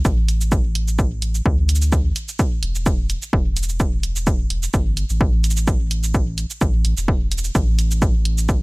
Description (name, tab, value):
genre	dub techno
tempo	128 BPM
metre	4/4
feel	swing 54% on 16ths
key	unclear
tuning	A4 = 440 Hz
part	soft dub sub bass	bass	0.0-8.6 s	E1 to D2	-20 LUFS	equal	sidechain pumping
part	electronic kick drum	drums	0.1-8.6 s	none	-19 LUFS	equal	none
part	electronic shaker and hi-hat	drums	0.1-8.6 s	none	-28 LUFS	right 3 dB	none
room	little or no reverb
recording	bright 1980s-style digital production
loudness	-17 LUFS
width	side -28 dB against mid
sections	0.1-8.6 A section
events	none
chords	none